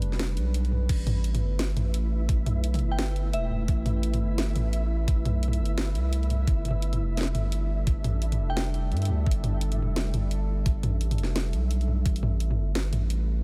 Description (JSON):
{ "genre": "half-time drum and bass", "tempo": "172 BPM", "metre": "4/4", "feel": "swing 59% on 16ths, half-time", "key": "unclear", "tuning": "A4 = 440 Hz", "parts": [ { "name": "deep dark ambient pad", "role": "sustained chords", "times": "0.0-13.4 s", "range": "G3 to B4", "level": "-39 LUFS", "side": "equal", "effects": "chorus, built-in reverb, sidechain pumping" }, { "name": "saturated sub bass", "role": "bass", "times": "0.0-13.4 s", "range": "E1 to G2", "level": "-29 LUFS", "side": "equal", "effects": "none" }, { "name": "drum and bass drum kit", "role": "drums", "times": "0.0-13.2 s", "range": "crash cymbal, hi-hat, snare drum, toms", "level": "-34 LUFS", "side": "equal", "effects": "none" }, { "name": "electronic kick drum", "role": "drums", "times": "0.9-12.1 s", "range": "none", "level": "-28 LUFS", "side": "equal", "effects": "none" }, { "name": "flickering grainy texture", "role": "texture", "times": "1.3-12.1 s", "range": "E4 to E5", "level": "-43 LUFS", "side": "equal", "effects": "built-in reverb" }, { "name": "glassy synth bell", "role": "melody", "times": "2.9-3.6, 8.5-8.6 s", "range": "E5 to G5", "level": "-40 LUFS", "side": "equal", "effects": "chorus, tremolo, tape echo" } ], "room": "little or no reverb", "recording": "none", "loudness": "-27 LUFS", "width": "mono", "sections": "0.0-12.1 A section; 12.1-13.4 A section", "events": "drop 0.0-12.1, 12.1-13.4; kick drops out 11.7-12.1", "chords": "0.0 G; 0.9 Asus2; 6.5 G5; 12.1 Asus2", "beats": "0.20 0.55 | 0.89 1.24 1.59 1.94 | 2.29 2.64 2.99 3.33 | 3.68 4.03 4.38 4.73 | 5.08 5.43 5.78 6.13 | 6.47 6.82 7.17 7.52 | 7.87 8.22 8.57 8.92 | 9.27 9.62 9.96 10.31 | 10.66 11.01 11.36 11.71 | 12.06 12.40 12.75 13.10" }